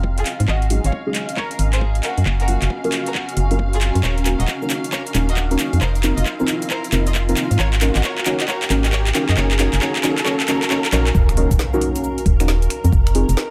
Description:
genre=UK garage, two-step garage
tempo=135 BPM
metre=4/4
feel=swing 64% on 16ths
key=Eb dorian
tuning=A4 = 439 Hz
part: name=soft string machine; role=sustained chords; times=0.0-13.5 s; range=Bb4 to F5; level=-37 LUFS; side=equal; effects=ensemble chorus, sidechain pumping
part: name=deep mellow chord stab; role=stabs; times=0.0-13.2 s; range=C4 to Bb4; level=-25 LUFS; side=equal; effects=chorus, phaser, delay
part: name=organ-like FM bass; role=bass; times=0.0-13.4 s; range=Eb1 to Ab2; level=-20 LUFS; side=equal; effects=none
part: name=electronic kick drum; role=drums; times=0.0-13.0 s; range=none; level=-23 LUFS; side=equal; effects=overdrive, high-pass filter on kick
part: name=riser and impact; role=sound effects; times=0.3-12.9 s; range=none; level=-32 LUFS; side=equal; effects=none
part: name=granular cloud pad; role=texture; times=0.0-13.5 s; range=C4 to Bb5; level=-33 LUFS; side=equal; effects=built-in reverb, sidechain pumping
part: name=clear studio violin section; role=melody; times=0.2-11.1 s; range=F4 to F5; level=-31 LUFS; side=equal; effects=low-pass filter, digital delay
part: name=garage drum kit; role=drums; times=0.2-13.5 s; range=cabasa, finger snaps, handclaps, hi-hat, snare drum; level=-26 LUFS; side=equal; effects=overdrive
room=light reverb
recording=none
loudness=-19 LUFS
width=mono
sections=0.0-11.1 A section; 11.1-13.5 B section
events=build-up 0.0-11.1; drum fill 0.0-11.1; filter sweep on synth stab 0.0-11.1; riser 0.3-11.1; drop 11.1-13.5; impact 11.1-12.9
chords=0.3 Ab7sus4; 2.0 Gbmaj7; 4.0 Ebm7; 5.6 Fm7; 7.4 Ab7sus4; 9.1 Gbmaj7; 11.1 Ebm7; 12.7 Fm7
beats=0.04 | 0.48 0.92 1.37 1.81 | 2.26 2.70 3.15 3.59 | 4.04 4.48 4.92 5.37 | 5.81 6.26 6.70 7.15 | 7.59 8.04 8.48 8.92 | 9.37 9.81 10.26 10.70 | 11.15 11.59 12.04 12.48 | 12.92 13.37

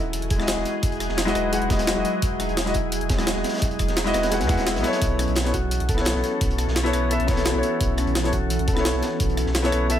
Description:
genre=liquid drum and bass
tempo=172 BPM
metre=4/4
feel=straight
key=E major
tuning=A4 = 440 Hz
part: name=glassy FM pad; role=sustained chords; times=0.0-10.0 s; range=E3 to D#5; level=-29 LUFS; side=equal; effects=ensemble chorus, built-in reverb, sidechain pumping
part: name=Celtic harp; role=arpeggios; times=0.0-10.0 s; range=C#4 to E5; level=-31 LUFS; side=equal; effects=ping-pong delay
part: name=sub bass with octave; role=bass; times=0.0-10.0 s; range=E1 to E2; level=-27 LUFS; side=equal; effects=none
part: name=crunchy breakbeat drum kit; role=drums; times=0.1-10.0 s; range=hi-hat, snare drum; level=-33 LUFS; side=equal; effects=high-pass filter on hats, studio ambience, high-pass filter on snare, high-pass filter on room
part: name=jungle sampler-style drum kit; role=drums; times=0.1-10.0 s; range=hi-hat, rim click, snare drum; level=-28 LUFS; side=equal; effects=studio ambience
part: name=electronic kick drum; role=drums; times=0.3-9.3 s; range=none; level=-25 LUFS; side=equal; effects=studio ambience
part: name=warm concert grand piano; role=accompaniment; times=0.4-10.0 s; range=G#3 to F#5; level=-25 LUFS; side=left 2 dB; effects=tape echo
part: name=swell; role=sound effects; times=4.4-5.0 s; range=none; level=-34 LUFS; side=right 3 dB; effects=none
room=studio reverb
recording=none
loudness=-20 LUFS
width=side -10 dB against mid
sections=0.0-10.0 A section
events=swell 4.4-5.0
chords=0.0 Emaj9; 5.0 B9sus4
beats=0.13 0.48 | 0.83 1.18 1.53 1.88 | 2.22 2.57 2.92 3.27 | 3.62 3.97 4.32 4.67 | 5.01 5.36 5.71 6.06 | 6.41 6.76 7.11 7.46 | 7.81 8.15 8.50 8.85 | 9.20 9.55 9.90

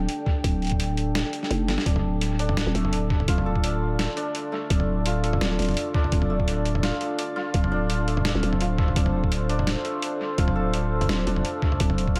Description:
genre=half-time drum and bass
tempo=169 BPM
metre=4/4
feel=swing 55% on 16ths, half-time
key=D minor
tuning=A4 = 441 Hz
part: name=dark analog pad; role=sustained chords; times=0.0-12.2 s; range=D4 to G5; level=-33 LUFS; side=equal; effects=chorus, sidechain pumping
part: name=growling 808-style bass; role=bass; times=0.0-12.2 s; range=D1 to G1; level=-28 LUFS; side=equal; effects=none
part: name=boom bap sampler-style drum kit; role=drums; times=0.1-12.2 s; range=hi-hat, snare drum, toms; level=-32 LUFS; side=equal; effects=dub echo
part: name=electronic kick drum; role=drums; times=0.3-12.1 s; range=none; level=-26 LUFS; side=equal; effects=none
part: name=santur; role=arpeggios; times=1.9-12.2 s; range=A3 to D5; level=-33 LUFS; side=equal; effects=dub echo
room=light reverb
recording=echo-heavy mix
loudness=-25 LUFS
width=mono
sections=0.0-12.2 A section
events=kick drops out 1.5-1.9; drum fill 1.7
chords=0.0 D5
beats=0.09 | 0.44 0.80 1.15 1.51 | 1.86 2.22 2.57 2.93 | 3.28 3.64 3.99 4.35 | 4.70 5.06 5.41 5.77 | 6.12 6.48 6.83 7.19 | 7.54 7.90 8.25 8.61 | 8.96 9.32 9.67 10.03 | 10.38 10.74 11.09 11.45 | 11.80 12.16

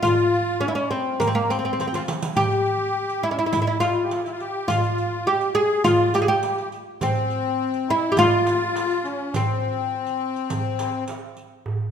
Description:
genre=Arabic maqam ensemble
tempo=103 BPM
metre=4/4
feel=straight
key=C maqam hijaz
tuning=A4 = 440 Hz
part: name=oud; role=melody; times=0.0-11.0 s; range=Bb3 to Ab4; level=-22 LUFS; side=equal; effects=none
part: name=musette accordion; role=second line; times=0.0-11.0 s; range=Bb3 to Ab4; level=-26 LUFS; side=left 4 dB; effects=none
part: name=darbuka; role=percussion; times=0.0-11.8 s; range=none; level=-29 LUFS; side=right 2 dB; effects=none
part: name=riq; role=percussion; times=0.0-11.4 s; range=none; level=-34 LUFS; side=right 2 dB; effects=none
room=moderate scoring stage reverb, RT60 1.5 s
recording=minimal, uncompressed stereo recording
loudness=-20 LUFS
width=side -8 dB against mid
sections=0.0-11.7 A section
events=drum fill 1.8-2.4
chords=none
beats=| 0.05 0.63 1.21 1.79 | 2.37 2.95 3.53 4.11 | 4.69 5.27 5.86 6.43 | 7.02 7.60 8.18 8.76 | 9.34 9.92 10.50 11.08 | 11.66

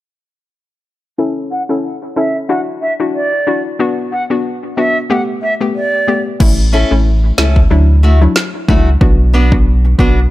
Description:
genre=dancehall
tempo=92 BPM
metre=4/4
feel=swing 56% on 16ths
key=unclear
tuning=A4 = 436 Hz
part: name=hollow square pluck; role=accompaniment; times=1.2-10.2 s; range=F#3 to A4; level=-17 LUFS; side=left 2 dB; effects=chorus, low-pass filter, analog delay
part: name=silver concert flute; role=melody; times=1.5-6.2 s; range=D5 to F#5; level=-17 LUFS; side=right 1 dB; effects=low-pass filter, analog delay
part: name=warm sub bass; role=bass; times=6.4-10.3 s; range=A1 to D2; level=-10 LUFS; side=equal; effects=none
part: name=afro-pop drum kit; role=drums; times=6.4-10.2 s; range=crash cymbal, kick drum, snare drum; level=-13 LUFS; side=equal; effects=none
part: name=fingerpicked steel-string acoustic guitar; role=arpeggios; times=6.7-10.2 s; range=A3 to A4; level=-18 LUFS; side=equal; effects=none
room=digital ambience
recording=echo-heavy mix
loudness=-11 LUFS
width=side -16 dB against mid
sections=1.2-6.4 A section; 6.4-10.3 B section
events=filter sweep 1.2-6.4; hi-hats muted 6.4-10.3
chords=1.2 A; 2.5 Dadd9; 3.8 Bm; 5.1 Gadd9; 6.4 A; 7.7 Dadd9; 9.0 Bm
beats=| 1.19 1.84 2.49 3.14 | 3.79 4.45 5.10 5.75 | 6.40 7.05 7.71 8.36 | 9.01 9.66

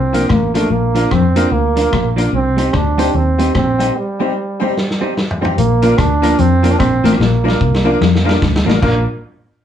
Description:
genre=ska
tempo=148 BPM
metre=4/4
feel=swing 60% on 8ths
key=Bb major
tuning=A4 = 440 Hz
part: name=clear trombone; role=melody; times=0.0-9.1 s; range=G3 to D4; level=-17 LUFS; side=right 4 dB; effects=none
part: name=clean electric guitar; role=riff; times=0.0-8.8 s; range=A2 to F3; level=-19 LUFS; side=left 7 dB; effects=none
part: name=fingered electric bass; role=bass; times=0.0-9.1 s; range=A1 to F2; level=-17 LUFS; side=equal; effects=none
part: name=clean electric guitar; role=accompaniment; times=0.1-9.0 s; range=F3 to Eb4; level=-21 LUFS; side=right 3 dB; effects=none
part: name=bright upright piano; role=stabs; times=0.1-9.0 s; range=Bb3 to C5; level=-20 LUFS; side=left 3 dB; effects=none
part: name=vintage drum kit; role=drums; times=0.1-8.9 s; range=crash cymbal, hi-hat, kick drum, rim click, snare drum, toms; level=-19 LUFS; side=equal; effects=vintage 12-bit sampler grit
room=wet studio reverb, RT60 0.5 s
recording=band playing live in one room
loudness=-12 LUFS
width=side -10 dB against mid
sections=0.0-5.6 A section; 5.6-8.8 B section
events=break 4.0-5.6; drum fill 4.8-5.6, 7.2-8.8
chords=0.0 Bb; 2.3 Cm; 5.6 Bb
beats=0.30 | 0.71 1.11 1.52 1.93 | 2.33 2.74 3.15 3.55 | 3.96 4.36 4.77 5.17 | 5.58 5.99 6.39 6.80 | 7.20 7.61 8.01 8.42 | 8.82

